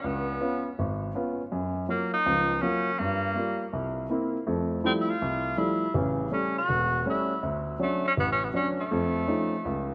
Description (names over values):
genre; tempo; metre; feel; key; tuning
jazz; 162 BPM; 4/4; swing 66% on 8ths; unclear; A4 = 435 Hz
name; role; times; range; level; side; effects
clear tenor saxophone; melody; 0.0-9.9 s; A3 to F#4; -31 LUFS; equal; none
warm grand piano; accompaniment; 0.0-9.9 s; E1 to E#4; -30 LUFS; equal; none
room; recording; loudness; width
moderate lush hall reverb, RT60 2.7 s; rough home demo mix; -28 LUFS; mono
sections
0.0-9.9 A section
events
none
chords
0.0 C#7; 1.5 F#maj7; 3.0 Gm7; 3.7 C7; 4.5 Fmaj9; 6.0 A7; 7.4 Dmaj7; 8.9 Faug7